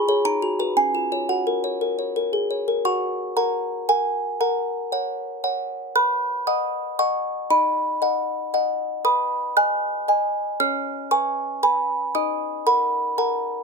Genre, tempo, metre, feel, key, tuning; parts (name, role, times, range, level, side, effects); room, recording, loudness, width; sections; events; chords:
classical, lullaby for music box; 116 BPM; 3/4; straight; F# major; A4 = 438 Hz
music box; solo; 0.0-13.6 s; C#4 to F#6; -20 LUFS; equal
light reverb; close, detailed microphones; -20 LUFS; side -4 dB against mid
0.0-2.9 A section; 2.9-13.6 B section
0.3 B/D#; 0.8 C#; 1.3 F#; 4.4 F#/A#; 6.0 B; 7.5 B/D#; 9.0 G#m/B; 10.6 C#7; 12.1 D#m